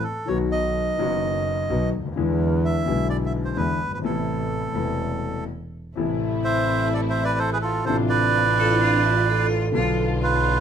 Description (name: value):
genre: tango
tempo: 127 BPM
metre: 4/4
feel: rubato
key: A harmonic minor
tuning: A4 = 440 Hz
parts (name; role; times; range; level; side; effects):
- bandoneon; melody; 0.0-10.6 s; F4 to E5; -24 LUFS; right 4 dB; none
- warm concert grand piano; accompaniment; 0.3-10.6 s; E1 to F#4; -25 LUFS; left 4 dB; none
- clear double bass; bass; 0.3-10.6 s; E1 to E2; -26 LUFS; right 2 dB; none
- dark studio string section; stabs; 6.0-10.6 s; A3 to F4; -30 LUFS; equal; none
- bright cello; second line; 8.6-10.1 s; E4 to A4; -28 LUFS; left 2 dB; none
- vibraphone with medium hard mallets; second line; 8.6-10.1 s; D4 to A4; -26 LUFS; right 4 dB; none
room: light reverb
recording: minimal, uncompressed stereo recording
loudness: -20 LUFS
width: side -8 dB against mid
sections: 0.0-6.0 A section; 6.0-10.6 A section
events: stop 5.5-6.0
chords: 0.3 B; 2.2 E7; 4.0 Amadd9; 6.0 Am; 7.9 Dm7/A; 9.7 Bdim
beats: | 0.28 0.76 1.23 1.70 | 2.17 2.64 3.11 3.58 | 4.04 4.52 5.00 5.48 | 5.97 6.45 6.92 7.40 | 7.87 8.34 8.81 9.28 | 9.75 10.21